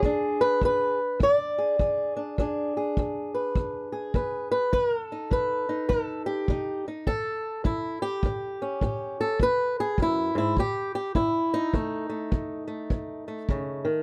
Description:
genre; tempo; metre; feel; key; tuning
acoustic country blues, solo or duo; 102 BPM; 4/4; swing 62% on 8ths; E mixolydian; A4 = 440 Hz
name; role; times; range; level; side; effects
fingerpicked swing-style acoustic guitar; melody; 0.0-14.0 s; E2 to D5; -28 LUFS; equal; none
kick drum; drums; 0.0-13.7 s; none; -31 LUFS; equal; none
room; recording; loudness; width
light reverb; none; -27 LUFS; mono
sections
0.0-14.0 A section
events
none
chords
0.0 E7; 4.7 B7; 7.1 A7; 9.4 E; 10.6 N.C.; 11.7 B7

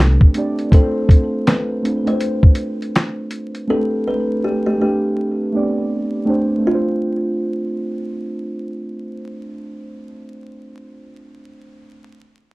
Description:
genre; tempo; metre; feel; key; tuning
lo-fi hip hop; 81 BPM; 4/4; swing 61% on 16ths; D dorian; A4 = 439 Hz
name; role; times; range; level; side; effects
kalimba; melody; 0.0-8.8 s; F4 to C5; -23 LUFS; left 1 dB; low-pass filter, analog delay
muted felt-like synth keys; accompaniment; 0.0-12.1 s; A3 to D5; -21 LUFS; right 1 dB; chorus, cassette tape, low-pass filter
dusty soul sampler-style drum kit; drums; 0.0-3.7 s; handclaps, hi-hat, kick drum, snare drum; -11 LUFS; equal; none
room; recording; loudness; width
moderate studio ambience, RT60 0.5 s; dark, warm production, vinyl crackle; -16 LUFS; side -21 dB against mid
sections
0.0-6.6 A section; 6.6-9.6 B section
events
none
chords
0.0 Am11; 0.7 Dm7; 3.7 Am11; 6.6 Dm7

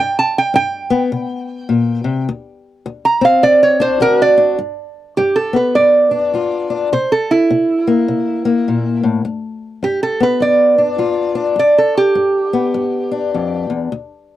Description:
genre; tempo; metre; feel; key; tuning
acoustic country blues, solo or duo; 103 BPM; 4/4; swing 62% on 8ths; G mixolydian; A4 = 441 Hz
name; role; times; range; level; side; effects
lap resonator guitar; melody; 0.0-13.7 s; E4 to Bb5; -13 LUFS; right 3 dB; none
fingerpicked old ladder-braced acoustic guitar; accompaniment; 0.0-14.4 s; D2 to F#4; -17 LUFS; left 5 dB; none
room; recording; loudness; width
little or no reverb; dry, close 1970s-style studio recording; -13 LUFS; side -13 dB against mid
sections
0.0-4.6 A section; 4.6-14.4 B section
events
resonator guitar played with a steel bar solo 0.0-4.6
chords
0.0 G; 1.1 C5; 2.3 D7; 4.6 G7; 6.9 C7; 9.2 G7

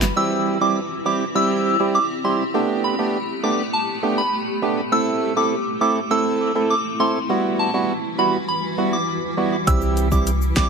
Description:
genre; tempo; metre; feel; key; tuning
dancehall; 101 BPM; 4/4; straight; unclear; A4 = 442 Hz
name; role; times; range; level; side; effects
percussive organ stab; accompaniment; 0.0-10.7 s; G3 to A4; -21 LUFS; right 3 dB; chorus, sidechain pumping
granular cloud pad; sustained chords; 0.0-10.7 s; E3 to B4; -26 LUFS; left 1 dB; built-in reverb, sidechain pumping
round analog bass; bass; 0.0-0.1, 9.7-10.7 s; G1 to C2; -22 LUFS; equal; none
deep house drum kit; drums; 0.0-0.2, 9.7-10.7 s; hi-hat, kick drum, snare drum; -21 LUFS; equal; none
egg shaker; percussion; 0.0-0.2, 9.7-10.6 s; none; -35 LUFS; left 14 dB; none
soft synth bell; melody; 0.2-10.7 s; A5 to E6; -23 LUFS; equal; chorus, phaser, tape echo
room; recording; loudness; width
light reverb; none; -18 LUFS; side -5 dB against mid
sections
0.2-10.7 A section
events
none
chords
0.2 C; 2.5 Gadd9; 4.9 Am; 7.3 Emadd9; 9.7 C

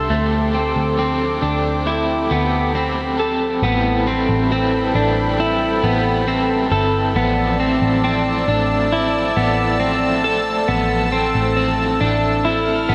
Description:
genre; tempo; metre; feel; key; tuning
dream pop; 68 BPM; 4/4; straight; A minor; A4 = 440 Hz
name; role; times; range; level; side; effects
crunchy overdriven guitar; accompaniment; 0.0-12.9 s; A2 to B4; -26 LUFS; equal; tremolo, subtle chorus
warm analog pad; sustained chords; 0.0-12.9 s; A4 to F6; -24 LUFS; equal; chorus
clean electric guitar; arpeggios; 0.0-12.9 s; A3 to A4; -22 LUFS; equal; analog chorus, digital delay
vintage muted picked electric bass; bass; 0.0-12.9 s; G1 to D2; -25 LUFS; equal; none
room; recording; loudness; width
moderate plate reverb, RT60 2.8 s; none; -18 LUFS; mono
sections
0.0-3.6 A section; 3.6-12.9 B section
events
none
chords
0.1 D7sus4; 3.6 Am9; 7.2 Dm9/A

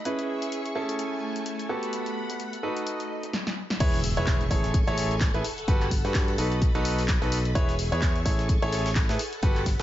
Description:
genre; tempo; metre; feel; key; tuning
piano house; 128 BPM; 4/4; swing 57% on 16ths; E major; A4 = 438 Hz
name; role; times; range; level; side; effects
string machine, violins; sustained chords; 0.0-9.8 s; A3 to C#6; -36 LUFS; equal; ensemble chorus, sidechain pumping
clear concert grand piano; riff; 0.0-9.8 s; B3 to C#5; -30 LUFS; right 1 dB; sidechain pumping, dub echo
breakbeat sampler-style drum kit; drums; 0.1-9.8 s; hi-hat, snare drum; -41 LUFS; equal; none
punchy analog drum machine; drums; 0.1-9.8 s; crash cymbal, handclaps, hi-hat, snare drum; -33 LUFS; left 1 dB; none
modern bright fingered electric bass; bass; 3.8-9.8 s; E1 to A2; -29 LUFS; equal; tube saturation, sidechain pumping
electronic kick drum; drums; 3.8-9.8 s; none; -25 LUFS; equal; none
impact; sound effects; 3.8-5.7 s; none; -35 LUFS; equal; none
room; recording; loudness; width
little or no reverb; nothing above 7.6 kHz; -24 LUFS; side -13 dB against mid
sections
0.0-3.8 A section; 3.8-9.8 B section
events
drum fill 3.3-3.8; drop 3.8-9.8; impact 3.8-5.7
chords
0.1 E6; 0.8 Amaj7; 1.7 Gmaj9; 2.6 B7; 3.8 E6; 4.5 Amaj7; 5.4 Gmaj9; 6.4 B7; 7.6 E6; 8.3 Amaj7; 9.2 Gmaj9

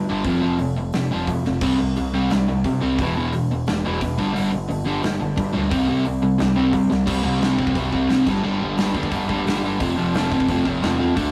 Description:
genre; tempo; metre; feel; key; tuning
punk rock; 176 BPM; 4/4; straight; unclear; A4 = 439 Hz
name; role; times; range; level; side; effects
overdriven semi-hollow guitar; riff; 0.0-11.3 s; E2 to D4; -22 LUFS; equal; none
growling picked electric bass; bass; 0.0-11.3 s; E1 to C3; -30 LUFS; equal; overdrive
big rock drum kit; drums; 0.2-11.2 s; crash cymbal, hi-hat, kick drum, snare drum; -30 LUFS; equal; none
room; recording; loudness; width
moderate small room reverb, RT60 0.5 s; rough rehearsal-room recording, warm saturation; -21 LUFS; mono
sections
0.0-7.1 A section; 7.1-11.3 B section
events
half time 0.0-7.1; drum fill 1.5, 6.9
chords
0.3 F5; 1.6 C5; 3.0 E5; 4.2 G5; 5.7 C5; 8.3 G5; 9.8 F5

